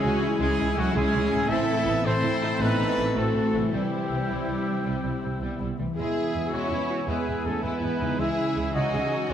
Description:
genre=cinematic, heroic adventure film score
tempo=108 BPM (dotted quarters)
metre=12/8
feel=straight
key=unclear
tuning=A4 = 440 Hz
part: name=warm symphonic violin section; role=melody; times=0.0-9.3 s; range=A3 to A4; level=-34 LUFS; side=left 5 dB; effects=none
part: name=clear oboe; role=second line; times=0.0-9.3 s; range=G5 to A5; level=-37 LUFS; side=right 1 dB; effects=none
part: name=small flute group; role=second line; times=0.0-9.3 s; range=E6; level=-40 LUFS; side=left 7 dB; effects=none
part: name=warm clarinet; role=second line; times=0.0-9.3 s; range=A3 to E4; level=-36 LUFS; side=right 1 dB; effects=none
part: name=warm symphonic violin section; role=second line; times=0.0-9.3 s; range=G3 to E4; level=-37 LUFS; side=left 2 dB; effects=none
part: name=warm symphonic viola section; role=accompaniment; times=0.0-9.3 s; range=E3 to G#4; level=-34 LUFS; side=right 1 dB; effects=none
part: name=mellow French horn section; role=sustained chords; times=0.0-9.3 s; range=E3 to E4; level=-34 LUFS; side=left 3 dB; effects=none
part: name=concert harp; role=arpeggios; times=0.0-9.3 s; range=A2 to A4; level=-36 LUFS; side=left 6 dB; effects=none
part: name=clear trumpet section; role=stabs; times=0.0-9.3 s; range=F#4 to E5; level=-30 LUFS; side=right 1 dB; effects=none
part: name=dark studio double bass section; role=bass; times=0.0-9.3 s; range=A1 to E2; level=-31 LUFS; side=right 2 dB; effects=none
part: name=dark symphonic cello section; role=bass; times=0.0-9.3 s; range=F#3 to E4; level=-31 LUFS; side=right 2 dB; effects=none
room=wet scoring stage reverb, RT60 1.7 s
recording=dark, warm production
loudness=-23 LUFS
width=side -9 dB against mid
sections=0.0-9.3 A section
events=none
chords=0.0 C#m; 1.5 Am; 3.7 C; 6.0 E; 8.2 C#m

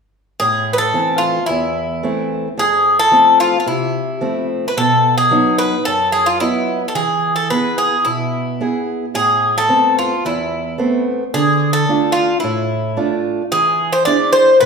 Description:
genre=greek folk, Greek bouzouki band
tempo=110 BPM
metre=4/4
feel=straight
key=A harmonic minor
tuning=A4 = 440 Hz
part: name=Greek bouzouki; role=melody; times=0.4-14.7 s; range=E4 to D5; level=-14 LUFS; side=left 1 dB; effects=none
part: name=fingerpicked acoustic archtop guitar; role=accompaniment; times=0.4-14.7 s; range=E2 to D#5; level=-19 LUFS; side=right 2 dB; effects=none
room=wet large studio reverb, RT60 1.2 s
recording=band playing live in one room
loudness=-14 LUFS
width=side -5 dB against mid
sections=0.4-14.7 A section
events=none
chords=0.4 Am; 2.6 F; 4.8 B; 7.0 E; 9.1 Amadd9; 11.3 Dm; 13.5 E7

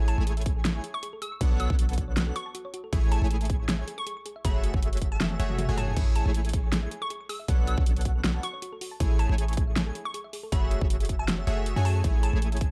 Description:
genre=future bass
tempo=158 BPM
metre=4/4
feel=swing 54% on 16ths, half-time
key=A major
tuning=A4 = 439 Hz
part: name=airy dreamy lead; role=arpeggios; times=0.0-12.7 s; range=E5 to G#5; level=-46 LUFS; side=equal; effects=chorus, cassette tape, sidechain pumping
part: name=thumb-piano-like synth pluck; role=arpeggios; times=0.0-12.7 s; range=F#4 to C#6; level=-46 LUFS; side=equal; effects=chorus, sidechain pumping, dub echo
part: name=supersaw stab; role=riff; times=0.0-12.7 s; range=A3 to G#5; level=-38 LUFS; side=equal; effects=sidechain pumping
part: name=warm 808-style bass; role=bass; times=0.0-12.7 s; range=F#1 to F#2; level=-30 LUFS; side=equal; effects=sidechain pumping
part: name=glassy wavetable pluck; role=melody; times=0.1-12.6 s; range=A5 to E6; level=-40 LUFS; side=equal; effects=chorus, sidechain pumping, dub echo
part: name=pop drum kit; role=drums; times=0.1-12.7 s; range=crash cymbal, hi-hat, snare drum, toms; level=-34 LUFS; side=equal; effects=overdrive
part: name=electronic kick drum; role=drums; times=0.5-12.7 s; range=none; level=-29 LUFS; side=equal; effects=none
room=little or no reverb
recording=dark, warm production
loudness=-27 LUFS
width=mono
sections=0.0-12.7 A section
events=drum fill 5.2-6.0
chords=0.0 Amaj7; 1.4 Bm9; 2.9 Amaj7; 4.4 F#m9; 6.0 Amaj7; 7.5 Bm9; 9.0 Amaj7; 10.5 F#m9; 12.0 Amaj7

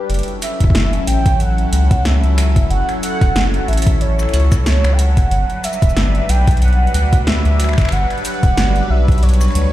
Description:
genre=IDM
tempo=92 BPM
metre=4/4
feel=swing 56% on 16ths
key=unclear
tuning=A4 = 440 Hz
part: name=phased analog pad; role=sustained chords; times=0.0-9.7 s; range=F#3 to B4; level=-23 LUFS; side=left 1 dB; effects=phaser, chorus
part: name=round analog bass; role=bass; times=0.1-9.7 s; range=D1 to D2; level=-14 LUFS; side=equal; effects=none
part: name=electro analog drum machine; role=drums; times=0.1-9.7 s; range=cabasa, finger snaps, hi-hat, snare drum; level=-23 LUFS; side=equal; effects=overdrive
part: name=warm velvety synth lead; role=melody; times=0.4-9.7 s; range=C#5 to G5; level=-22 LUFS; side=right 1 dB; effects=chorus, ping-pong delay
part: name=electronic kick drum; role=drums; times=0.6-9.2 s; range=none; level=-13 LUFS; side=equal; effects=overdrive
room=little or no reverb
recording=played on a big sound system in a bare room, stone room reverb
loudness=-12 LUFS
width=side -14 dB against mid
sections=0.1-9.7 A section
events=none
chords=0.1 F#m7; 5.3 Gmaj7

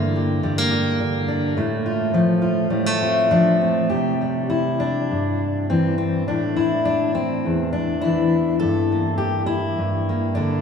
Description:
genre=folk, solo fingerstyle acoustic guitar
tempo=103 BPM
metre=4/4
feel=rubato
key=C mixolydian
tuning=A4 = 440 Hz
part: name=fingerpicked steel-string acoustic guitar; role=solo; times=0.0-10.6 s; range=E2 to A4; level=-18 LUFS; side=left 1 dB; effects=none
room=wet cathedral reverb, RT60 5.3 s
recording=in a vast, echoing space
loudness=-18 LUFS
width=side -6 dB against mid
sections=0.0-3.9 A section; 3.9-10.6 B section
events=none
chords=0.0 Gm; 1.6 F/A; 3.9 C; 6.3 Am; 8.6 Gmadd9

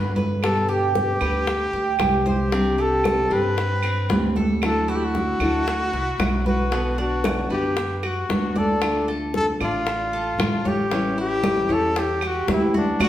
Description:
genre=latin, Cuban son and guajira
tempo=114 BPM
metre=4/4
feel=straight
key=unclear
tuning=A4 = 440 Hz
part: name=breathy trumpet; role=melody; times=0.0-13.1 s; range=D4 to B4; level=-24 LUFS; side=left 1 dB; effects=none
part: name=nylon-string guitar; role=accompaniment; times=0.0-13.1 s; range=B2 to G4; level=-27 LUFS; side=left 2 dB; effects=none
part: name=Cuban tres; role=arpeggios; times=0.0-13.1 s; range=B3 to D5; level=-29 LUFS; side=right 4 dB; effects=none
part: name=upright bass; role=bass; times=0.0-13.1 s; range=A1 to G2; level=-27 LUFS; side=right 1 dB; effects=none
part: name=bongos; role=percussion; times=0.2-13.1 s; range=none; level=-31 LUFS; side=left 3 dB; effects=none
part: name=congas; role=percussion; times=0.2-13.1 s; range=none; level=-27 LUFS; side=equal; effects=none
part: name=claves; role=percussion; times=0.4-13.1 s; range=none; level=-33 LUFS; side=right 2 dB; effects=none
room=wet large studio reverb, RT60 1.3 s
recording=heard from further back in the room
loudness=-19 LUFS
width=side -12 dB against mid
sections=0.0-13.1 A section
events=none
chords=0.4 G; 2.5 Csus2; 4.6 Dadd9; 6.7 Bm; 8.8 Dm; 10.9 A7

